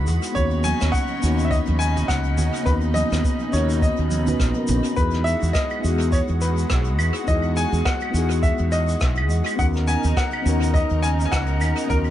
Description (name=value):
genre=sunset chillout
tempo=104 BPM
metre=4/4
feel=swing 57% on 16ths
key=E lydian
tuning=A4 = 440 Hz
part: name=clear baby grand piano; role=melody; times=0.0-12.0 s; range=A#4 to G#5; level=-27 LUFS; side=left 1 dB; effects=analog delay
part: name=mellow FM electric piano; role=accompaniment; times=0.0-12.1 s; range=A#3 to B4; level=-26 LUFS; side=moving between left 5 dB and right 3 dB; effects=chorus, auto-pan, cassette tape, low-pass filter, tape echo
part: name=lush unison pad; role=sustained chords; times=0.0-12.1 s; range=B2 to C#5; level=-30 LUFS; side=right 1 dB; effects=chorus, vintage 12-bit sampler grit
part: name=mellow fretless electric bass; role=bass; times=0.0-12.1 s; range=A#1 to E2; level=-21 LUFS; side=equal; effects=analog chorus
part: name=drifting glass-harmonics texture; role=texture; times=0.0-5.0 s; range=B5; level=-39 LUFS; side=left 2 dB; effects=chorus, built-in reverb
part: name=shaker, rim click and claves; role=drums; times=0.1-12.0 s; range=none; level=-31 LUFS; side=right 1 dB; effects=tape echo
part: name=congas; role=percussion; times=0.1-4.8 s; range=none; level=-33 LUFS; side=right 5 dB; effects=none
part: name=electronic kick drum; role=drums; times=0.4-12.0 s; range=none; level=-23 LUFS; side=equal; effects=none
room=light reverb, studio reverb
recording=echo-heavy mix, nothing above 10.4 kHz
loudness=-18 LUFS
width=side -12 dB against mid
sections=0.0-5.0 A section; 5.0-12.1 A section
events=none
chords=0.4 Bmaj9; 5.0 Emaj9; 9.6 Bmaj9